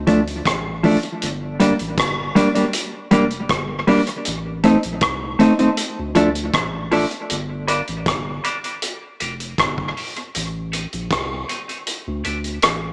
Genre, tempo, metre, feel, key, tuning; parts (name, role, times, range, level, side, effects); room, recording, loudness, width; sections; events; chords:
dub reggae; 79 BPM; 4/4; straight; G minor; A4 = 439 Hz
soft dub sub bass; bass; 0.0-12.9 s; F1 to D2; -28 LUFS; equal
mellow electric guitar; accompaniment; 0.1-12.4 s; F3 to Eb4; -17 LUFS; equal; high-pass filter, tape echo
vintage drum kit; drums; 0.1-12.8 s; hi-hat, kick drum, rim click; -22 LUFS; equal; tape echo
light reverb, studio ambience; small speaker sound; -17 LUFS; side -35 dB against mid
0.0-12.9 A section
filter sweep on clean electric guitar 4.3-12.9; kick muted 11.9-12.9
0.0 Dm; 1.2 Gm; 4.3 Adim; 5.8 Dm; 7.3 Gm; 10.3 Adim; 11.9 D5